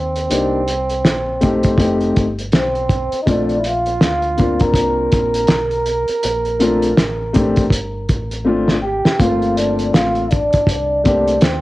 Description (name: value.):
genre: hip hop, jazz-hop.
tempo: 81 BPM.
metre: 4/4.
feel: swing 60% on 16ths.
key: Bb major.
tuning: A4 = 440 Hz.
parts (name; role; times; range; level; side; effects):
trombone with cup mute; melody; 0.0-11.6 s; C4 to Bb4; -20 LUFS; right 2 dB; none.
deep dub fingered electric bass; bass; 0.0-11.6 s; F1 to D#2; -26 LUFS; equal; none.
cloth-damped thuddy drum kit; drums; 0.2-11.6 s; hi-hat, kick drum, snare drum; -17 LUFS; equal; cassette tape.
dark concert grand piano; accompaniment; 0.3-11.3 s; A3 to G4; -17 LUFS; left 2 dB; cassette tape.
vibraphone with soft mallets; second line; 2.5-11.6 s; C5 to Bb5; -24 LUFS; left 3 dB; cassette tape.
room: light reverb.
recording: home recording on cassette.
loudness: -14 LUFS.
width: side -18 dB against mid.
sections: 0.0-9.2 A section; 9.2-11.6 B section.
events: drum fill 8.5-9.2.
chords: 0.3 Cm9; 1.8 F9; 3.3 Bbmaj7; 9.2 Gm11.